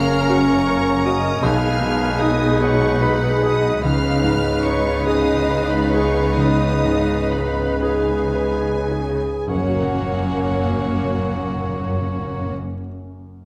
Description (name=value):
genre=classical, romantic movement for piano and orchestra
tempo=35-54 BPM (dotted quarters)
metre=12/8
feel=rubato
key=F# major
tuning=A4 = 440 Hz
part: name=clear concert grand piano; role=melody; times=0.0-13.4 s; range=B1 to F#5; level=-25 LUFS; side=equal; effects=none
part: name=rich chamber violin section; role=melody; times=0.0-12.5 s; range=F#5 to E#6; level=-33 LUFS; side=equal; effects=none
part: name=clear chamber violin section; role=second line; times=0.0-12.5 s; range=C#4 to A#5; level=-36 LUFS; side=equal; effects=none
part: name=hollow flute section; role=second line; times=0.0-12.5 s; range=G#4 to E#5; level=-31 LUFS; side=equal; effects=none
part: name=mellow clarinet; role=second line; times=0.0-12.5 s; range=C#4 to D#4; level=-31 LUFS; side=equal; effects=none
part: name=warm oboe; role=second line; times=0.0-12.5 s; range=B4 to C#5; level=-31 LUFS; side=equal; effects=none
part: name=rich symphonic viola section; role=accompaniment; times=0.0-12.5 s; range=F#3 to B4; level=-30 LUFS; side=equal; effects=none
part: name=warm bassoon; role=accompaniment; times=0.0-12.5 s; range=G#3 to A#3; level=-30 LUFS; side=equal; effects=none
part: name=dark French horn section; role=sustained chords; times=0.0-12.5 s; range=G#3 to D#4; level=-31 LUFS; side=equal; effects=none
part: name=rich chamber double bass section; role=bass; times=0.0-12.5 s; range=F#1 to C#2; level=-28 LUFS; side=equal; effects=none
part: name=warm chamber cello section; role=bass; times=0.0-12.5 s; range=F#2 to C#3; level=-30 LUFS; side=equal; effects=none
part: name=timpani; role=percussion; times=0.0-0.3, 9.5-12.6 s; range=F#2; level=-30 LUFS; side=equal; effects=none
room=wet recital hall reverb, RT60 1.6 s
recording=none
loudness=-19 LUFS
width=mono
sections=0.0-9.5 A section; 9.5-13.4 B section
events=slowing down 0.7-9.5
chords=0.0 F#; 1.4 G#m/B; 3.8 C#9; 9.5 F#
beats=0.30 1.44 2.61 | 3.83 5.07 6.38 7.83 | 9.49 11.15 12.79